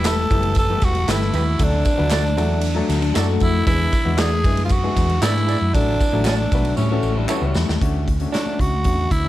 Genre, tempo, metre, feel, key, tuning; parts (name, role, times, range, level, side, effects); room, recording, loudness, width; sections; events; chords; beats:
uptempo 1960s-style soul; 116 BPM; 4/4; straight; D major; A4 = 440 Hz
raspy tenor saxophone; melody; 0.0-9.3 s; B3 to A4; -23 LUFS; right 1 dB; tape echo
clear concert grand piano; accompaniment; 0.0-9.3 s; E3 to B4; -27 LUFS; left 4 dB
electric guitar through a small old amp; stabs; 0.0-8.4 s; D4 to D5; -28 LUFS; right 10 dB
hollow-body short-scale fingered electric bass; bass; 0.0-9.3 s; E1 to A2; -21 LUFS; equal
raw garage drum kit; drums; 0.0-9.2 s; hi-hat, kick drum, ride cymbal, snare drum; -22 LUFS; equal
handclaps and tambourine; percussion; 0.0-7.7 s; -34 LUFS; equal
electric guitar through a small old amp; riff; 3.0-3.7, 6.8-7.8 s; F#3 to F#4; -27 LUFS; left 10 dB
small room ambience; -16 LUFS; side -14 dB against mid
0.0-7.8 A section; 7.8-9.3 B section
drum fill 6.8-7.8
0.0 Em; 1.6 D; 3.7 E7; 5.7 D/A; 6.8 A; 7.8 Dmaj7
0.05 0.57 1.08 | 1.60 2.12 2.64 3.15 | 3.67 4.19 4.71 5.22 | 5.74 6.26 6.78 7.29 | 7.81 8.33 8.85